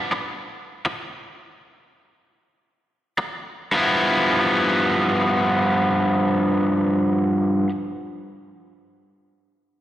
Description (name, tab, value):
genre	blues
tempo	70-84 BPM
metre	4/4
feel	swing 67% on 8ths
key	G mixolydian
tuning	A4 = 440 Hz
part	overdriven electric guitar	solo	0.1-7.7 s	G2 to E4	-19 LUFS	equal	slapback echo
room	light reverb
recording	live gig heard through the venue's PA, recital hall reverb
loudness	-18 LUFS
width	side -13 dB against mid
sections	0.0-3.7 A section; 3.7-7.1 B section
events	slowing down 0.0-3.7; stop 0.6-2.9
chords	0.0 G7 (rootless); 0.6 E5; 2.9 F#; 3.7 G6